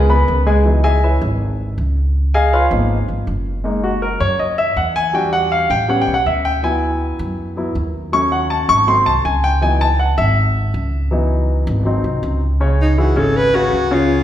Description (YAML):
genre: jazz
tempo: 161 BPM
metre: 4/4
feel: straight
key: C# minor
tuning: A4 = 439 Hz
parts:
  - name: warm grand piano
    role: accompaniment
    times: 0.0-14.2 s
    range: C#3 to C#6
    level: -17 LUFS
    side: left 1 dB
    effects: none
  - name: upright bass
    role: bass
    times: 0.0-14.2 s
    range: F#1 to F#2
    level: -18 LUFS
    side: equal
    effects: none
  - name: warm alto saxophone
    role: melody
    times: 12.8-14.2 s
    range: D#4 to B4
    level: -17 LUFS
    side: equal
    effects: none
room: wet recital hall reverb, RT60 1.8 s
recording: recorded in a church or concert hall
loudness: -14 LUFS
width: side -11 dB against mid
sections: 0.7-12.6 A section; 12.6-14.2 B section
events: grand piano solo 0.7-12.6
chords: 0.0 C#5; 0.7 C#m11; 2.2 C#13; 3.6 F#69; 5.1 Em9; 5.9 A7; 6.6 D69; 8.1 D#m7b5; 8.9 G#7b9; 9.6 C#m11; 11.9 G#7; 12.6 C#madd11